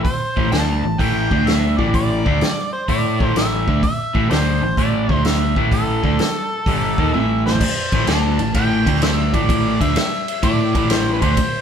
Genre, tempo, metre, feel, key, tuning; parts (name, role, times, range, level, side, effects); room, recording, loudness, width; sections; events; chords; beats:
blues rock power trio and southern rock; 127 BPM; 4/4; swing 68% on 8ths; A minor; A4 = 442 Hz
overdriven harmonica; melody; 0.0-11.6 s; G4 to A5; -23 LUFS; equal; slapback echo
crunchy overdriven guitar; riff; 0.0-11.4 s; G2 to A4; -20 LUFS; equal
vintage drum kit; drums; 0.0-11.5 s; crash cymbal, hi-hat, kick drum, ride cymbal, snare drum, toms; -20 LUFS; equal
vintage muted fingered electric bass; bass; 0.4-11.4 s; G1 to A2; -22 LUFS; left 1 dB
moderate studio ambience, RT60 0.5 s; band playing live in one room; -15 LUFS; side -8 dB against mid
0.0-7.6 A section; 7.6-11.6 A section
drum fill 7.1-7.6
0.0 Am; 1.2 D5; 1.7 A5; 5.0 D5; 5.5 A5; 7.6 Am; 8.8 D5; 9.3 Am
| 0.05 0.52 1.00 1.47 | 1.94 2.42 2.89 3.36 | 3.83 4.30 4.78 5.25 | 5.72 6.19 6.66 7.13 | 7.61 8.08 8.55 9.02 | 9.49 9.96 10.43 10.90 | 11.37